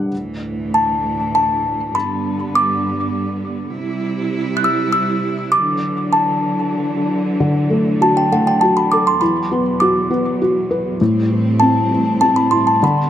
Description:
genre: children's music, lullaby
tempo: 100 BPM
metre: 3/4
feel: rubato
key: unclear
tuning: A4 = 440 Hz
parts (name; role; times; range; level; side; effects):
- felt-muted upright piano; accompaniment; 0.0-0.1, 7.4-13.1 s; G2 to F#5; -17 LUFS; left 1 dB; none
- rich studio string section; sustained chords; 0.1-13.1 s; D2 to E4; -21 LUFS; right 1 dB; none
- music box; melody; 0.7-13.1 s; F#5 to F#6; -17 LUFS; equal; tape echo
room: wet small room ambience, RT60 0.5 s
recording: dark, warm production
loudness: -15 LUFS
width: side -10 dB against mid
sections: 0.1-13.1 A section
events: none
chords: 0.1 Dsus2; 1.9 G; 3.7 C; 5.5 Dadd9; 9.2 Esus2; 11.0 Am7

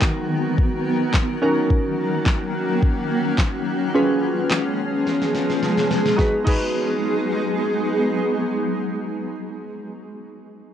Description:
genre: dance-pop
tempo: 107 BPM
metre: 4/4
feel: straight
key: G# dorian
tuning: A4 = 443 Hz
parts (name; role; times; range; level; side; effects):
- glassy digital keys; accompaniment; 0.0-9.9 s; B3 to B4; -24 LUFS; right 1 dB; chorus, sidechain pumping
- granular cloud pad; sustained chords; 0.0-9.2 s; D#3 to A#4; -22 LUFS; equal; built-in reverb, sidechain pumping
- smooth R&B drum kit; drums; 0.0-6.6 s; crash cymbal, handclaps, kick drum, snare drum; -21 LUFS; equal; none
room: moderate small room reverb, RT60 0.5 s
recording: home recording on cassette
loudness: -19 LUFS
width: side -10 dB against mid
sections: 0.0-6.2 A section; 6.2-8.4 B section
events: drum fill 5.1-6.2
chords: 0.0 Bmaj7; 1.4 D#m7; 3.9 C#7; 6.2 G#m7

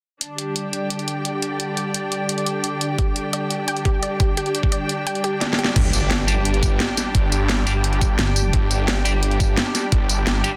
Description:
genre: dark technical drum and bass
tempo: 173 BPM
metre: 4/4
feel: straight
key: unclear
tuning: A4 = 440 Hz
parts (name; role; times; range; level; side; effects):
- sweeping resonant pad; sustained chords; 0.2-10.6 s; D3 to D5; -30 LUFS; equal; chorus, sidechain pumping
- drum and bass drum kit; drums; 0.2-10.5 s; crash cymbal, hi-hat, snare drum, tambourine; -26 LUFS; equal; none
- clear studio string section; texture; 0.2-10.6 s; D4 to G5; -30 LUFS; equal; sidechain pumping
- unison pluck; arpeggios; 3.0-5.7 s; G4 to G5; -30 LUFS; equal; sidechain pumping, tape echo
- electronic kick drum; drums; 3.0-10.0 s; none; -22 LUFS; equal; none
- snarling distorted saw bass; bass; 5.8-10.4 s; G1; -24 LUFS; equal; distortion, overdrive
- impact; sound effects; 5.8-7.1 s; none; -30 LUFS; equal; none
- distorted electric guitar; stabs; 6.3-10.5 s; G3 to G4; -31 LUFS; equal; overdrive, tape echo
- pulsing pluck wobble bass; bass; 8.2-8.5 s; G1; -22 LUFS; equal; chorus
room: light reverb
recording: dense, heavily limited modern master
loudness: -21 LUFS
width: mono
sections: 0.2-5.8 A section; 5.8-10.6 B section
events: kick drops out 5.1-5.8; drum fill 5.4-5.8; drop 5.8-10.6; impact 5.8-7.1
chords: 0.2 G5

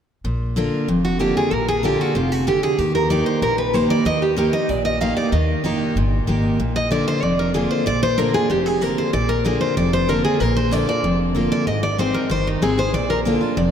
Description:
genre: bluegrass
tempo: 189 BPM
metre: 4/4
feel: straight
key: Bb mixolydian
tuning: A4 = 438 Hz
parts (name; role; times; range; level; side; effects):
- picked steel-string acoustic guitar; accompaniment; 0.2-13.7 s; F2 to Ab4; -21 LUFS; equal; none
- upright bass; bass; 0.2-13.7 s; F1 to Eb2; -24 LUFS; equal; none
- picked steel-string acoustic guitar; melody; 1.0-13.7 s; Eb4 to F5; -20 LUFS; right 1 dB; none
room: wet cathedral reverb, RT60 5.1 s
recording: in a vast, echoing space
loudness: -17 LUFS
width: side -8 dB against mid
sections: 0.2-13.7 A section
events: none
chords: 0.2 Bb; 2.8 Eb; 6.6 Bb; 11.7 Ab; 12.9 Bb

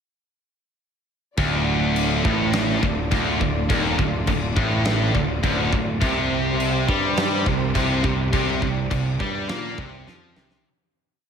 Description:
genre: heavy metal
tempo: 104 BPM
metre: 4/4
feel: straight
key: D minor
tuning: A4 = 439 Hz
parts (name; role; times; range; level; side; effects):
- rich studio string section; sustained chords; 1.4-10.6 s; C3 to D5; -32 LUFS; equal; none
- heavy high-gain guitar; riff; 1.4-10.6 s; D2 to Bb3; -26 LUFS; left 8 dB; distortion
- heavy high-gain guitar; riff; 1.4-10.6 s; D2 to Bb3; -26 LUFS; right 9 dB; distortion
- thick fuzz guitar; riff; 1.4-10.6 s; D2 to Bb3; -27 LUFS; right 1 dB; distortion
- fuzz picked electric bass; bass; 1.4-10.6 s; D1 to Bb2; -27 LUFS; equal; overdrive
- big rock drum kit; drums; 1.4-10.6 s; crash cymbal, kick drum, snare drum; -25 LUFS; left 1 dB; none
room: moderate lush hall reverb, RT60 1.9 s, small room ambience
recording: big arena sound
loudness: -19 LUFS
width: side -7 dB against mid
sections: 1.4-10.6 riff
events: fade-out 8.3-10.6; drum fill 10.1-10.6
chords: 1.4 Dm; 6.0 C5

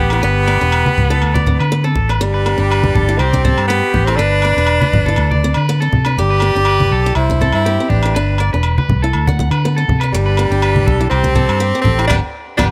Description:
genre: highlife guitar band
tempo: 121 BPM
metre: 4/4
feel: swing 54% on 16ths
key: G major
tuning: A4 = 439 Hz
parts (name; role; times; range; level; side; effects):
- edgy tenor saxophone; melody; 0.0-12.6 s; G3 to G4; -20 LUFS; equal; none
- breathy trumpet; second line; 0.0-12.7 s; D4 to D5; -28 LUFS; equal; none
- picked swing-style acoustic guitar; accompaniment; 0.0-12.7 s; B3 to G4; -27 LUFS; equal; none
- electric guitar at the edge of break-up; arpeggios; 0.0-12.7 s; G4 to F#5; -25 LUFS; equal; none
- fingered electric bass; bass; 0.0-12.7 s; E1 to D3; -18 LUFS; equal; none
- agogo bells; percussion; 0.1-12.7 s; none; -27 LUFS; equal; none
- congas; percussion; 0.9-12.7 s; none; -20 LUFS; equal; none
room: light reverb, small room ambience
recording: none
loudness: -14 LUFS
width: mono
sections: 0.0-12.7 A section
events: band accent 12.1-12.7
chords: 0.2 G; 1.2 D5; 2.2 G; 3.2 C; 4.2 G; 5.2 D5; 6.2 G; 7.2 C; 8.1 G; 9.1 D; 10.1 G; 11.1 C; 12.1 G

